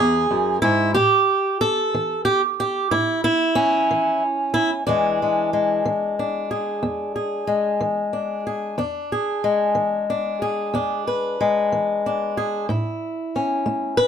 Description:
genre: acoustic country blues, solo or duo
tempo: 61 BPM (dotted quarters)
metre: 12/8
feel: straight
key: E mixolydian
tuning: A4 = 439 Hz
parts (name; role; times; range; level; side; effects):
- fingerpicked swing-style acoustic guitar; solo; 0.0-14.1 s; E2 to B4; -19 LUFS; equal; none
room: light reverb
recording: none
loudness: -19 LUFS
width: side -8 dB against mid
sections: 0.0-14.1 A section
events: none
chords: 0.0 E7; 1.0 A7; 4.9 E7; 12.7 A

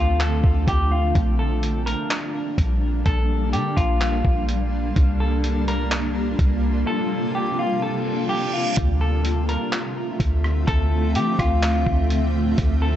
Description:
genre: hip hop, atmospheric cloud-rap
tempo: 126 BPM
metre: 4/4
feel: half-time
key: D minor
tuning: A4 = 440 Hz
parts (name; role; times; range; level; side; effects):
- clean electric guitar; melody; 0.0-13.0 s; F4 to Bb4; -27 LUFS; left 1 dB; spring reverb, low-pass filter, tape echo
- granular cloud pad; sustained chords; 0.0-13.0 s; C3 to E5; -25 LUFS; equal; built-in reverb, sidechain pumping
- clean 808-style bass; bass; 0.0-13.0 s; Bb1 to F3; -21 LUFS; equal; none
- lo-fi sampler-style drum kit; drums; 0.2-12.7 s; handclaps, hi-hat, kick drum, rim click; -24 LUFS; equal; none
- reverse cymbal; sound effects; 8.0-8.8 s; none; -30 LUFS; right 5 dB; none
room: light reverb, digital ambience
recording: nothing above 8.0 kHz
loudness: -19 LUFS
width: side -11 dB against mid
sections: 0.0-8.8 A section; 8.8-13.0 B section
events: reverse cymbal 8.0-8.8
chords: 0.0 Dm7; 1.2 Bb6; 5.0 C7sus4; 8.8 Dm7

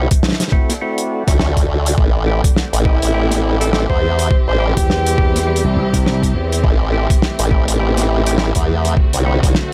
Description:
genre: glitch hop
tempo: 103 BPM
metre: 4/4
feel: swing 59% on 16ths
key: A minor pentatonic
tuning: A4 = 435 Hz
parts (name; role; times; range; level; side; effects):
- percussive tonewheel organ; stabs; 0.0-9.4 s; G3 to G4; -27 LUFS; equal; overdrive, stopped rotary speaker, sidechain pumping, low-pass filter, dub echo
- formant-sweep wobble bass; bass; 0.0-9.5 s; A1 to E2; -18 LUFS; equal; chorus, overdrive
- warbly tape-like pad; texture; 0.1-9.7 s; G4 to F#5; -31 LUFS; equal; none
- damped 70s drum kit; drums; 0.1-9.7 s; hi-hat, snare drum; -22 LUFS; equal; none
- electronic kick drum; drums; 0.1-9.5 s; none; -18 LUFS; equal; none
- warm studio string section; sustained chords; 2.0-9.7 s; D3 to G4; -29 LUFS; equal; sidechain pumping
- warm tenor saxophone; melody; 2.9-5.6 s; E4 to C5; -24 LUFS; equal; none
- slap bass with an envelope filter; bass; 4.8-6.6 s; C2 to E2; -19 LUFS; equal; none
room: small room reverb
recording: none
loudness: -16 LUFS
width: mono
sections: 0.0-9.7 A section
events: none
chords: 0.0 D7; 2.0 Am7; 9.0 D7

